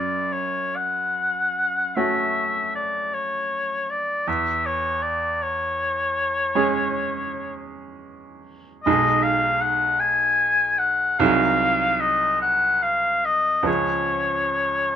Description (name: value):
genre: classical, romantic duo for oboe and grand piano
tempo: 46-53 BPM (dotted quarters)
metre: 12/8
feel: rubato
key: unclear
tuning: A4 = 437 Hz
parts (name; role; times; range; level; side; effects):
- clear oboe; melody; 0.0-15.0 s; C#5 to G#5; -21 LUFS; left 2 dB; none
- bright baby grand piano; accompaniment; 0.0-15.0 s; B1 to G#4; -26 LUFS; right 4 dB; none
room: light reverb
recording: none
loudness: -20 LUFS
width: side -9 dB against mid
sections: 0.0-15.0 A section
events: none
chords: 0.0 F#m; 4.3 C#m/E; 8.9 G#m/B; 11.2 G#7/B#; 13.7 C#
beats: 0.75 1.95 3.13 | 4.27 5.42 6.56 7.71 | 8.87 10.03 11.20 12.42 | 13.67 14.95